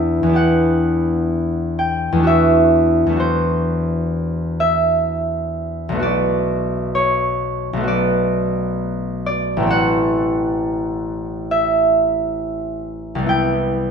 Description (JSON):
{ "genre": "classical, solo harp piece", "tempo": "65 BPM", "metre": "4/4", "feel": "uneven beats, rubato", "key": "E minor", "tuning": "A4 = 440 Hz", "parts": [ { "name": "concert harp", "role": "solo", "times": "0.0-13.9 s", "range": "A1 to G5", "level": "-16 LUFS", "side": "equal", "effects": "none" } ], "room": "wet stone room reverb, RT60 1.1 s", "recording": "dark, warm production, nothing above 11.0 kHz", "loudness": "-16 LUFS", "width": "side -6 dB against mid", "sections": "0.0-13.9 A section", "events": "none", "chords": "0.0 Em9; 2.3 D9/E; 6.0 Bm7; 9.7 Am6; 13.3 Cmaj7" }